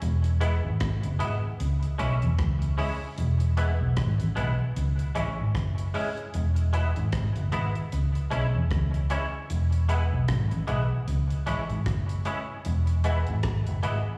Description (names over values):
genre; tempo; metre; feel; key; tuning
roots reggae; 76 BPM; 4/4; swing 58% on 16ths; unclear; A4 = 441 Hz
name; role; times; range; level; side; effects
vintage muted fingered electric bass; bass; 0.0-14.1 s; E1 to E2; -27 LUFS; equal; none
damped 70s drum kit; drums; 0.0-14.0 s; hi-hat, kick drum, rim click; -37 LUFS; equal; slapback echo
semi-hollow electric guitar; accompaniment; 0.4-14.0 s; G#3 to E4; -35 LUFS; equal; ensemble chorus, tape echo, slapback echo
room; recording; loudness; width
small room reverb; live gig heard through the venue's PA, recital hall reverb, small room ambience; -27 LUFS; mono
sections
0.0-14.2 A section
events
none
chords
0.0 E; 1.6 C#m; 3.2 E; 4.8 C#m; 6.3 E; 7.9 C#m; 9.5 E; 11.1 C#m; 12.7 E